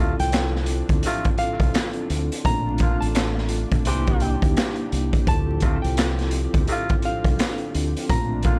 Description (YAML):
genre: hip hop, boom-bap hip-hop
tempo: 85 BPM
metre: 4/4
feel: swing 60% on 16ths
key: D minor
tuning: A4 = 439 Hz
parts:
  - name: flamenco guitar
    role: melody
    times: 0.0-8.6 s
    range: F5 to Bb5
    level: -32 LUFS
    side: equal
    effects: high-pass filter, low-pass filter, tape echo
  - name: vibraphone with soft mallets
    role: accompaniment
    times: 0.0-8.6 s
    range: A3 to A4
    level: -31 LUFS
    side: equal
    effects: cassette tape, high-pass filter, low-pass filter
  - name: warm analog pad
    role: sustained chords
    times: 0.0-8.6 s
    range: C3 to G4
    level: -38 LUFS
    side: equal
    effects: subtle chorus, high-pass filter, low-pass filter
  - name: clear saxophone section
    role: stabs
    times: 0.0-8.6 s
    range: C3 to G4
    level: -32 LUFS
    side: equal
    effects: high-pass filter, low-pass filter, tape echo
  - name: deep dub fingered electric bass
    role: bass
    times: 0.0-8.6 s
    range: A1 to D2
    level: -27 LUFS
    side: equal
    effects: none
  - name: raw garage drum kit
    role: drums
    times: 0.2-8.6 s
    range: handclaps, hi-hat, kick drum, snare drum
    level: -25 LUFS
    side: equal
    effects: none
  - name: finger snaps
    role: percussion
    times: 0.3-7.6 s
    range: none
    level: -39 LUFS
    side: equal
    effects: none
room: small room ambience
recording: vinyl crackle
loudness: -22 LUFS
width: mono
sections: 0.0-8.6 A section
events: none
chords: 0.0 Dm9; 2.4 Bbmaj7; 3.9 C7; 5.3 Dm9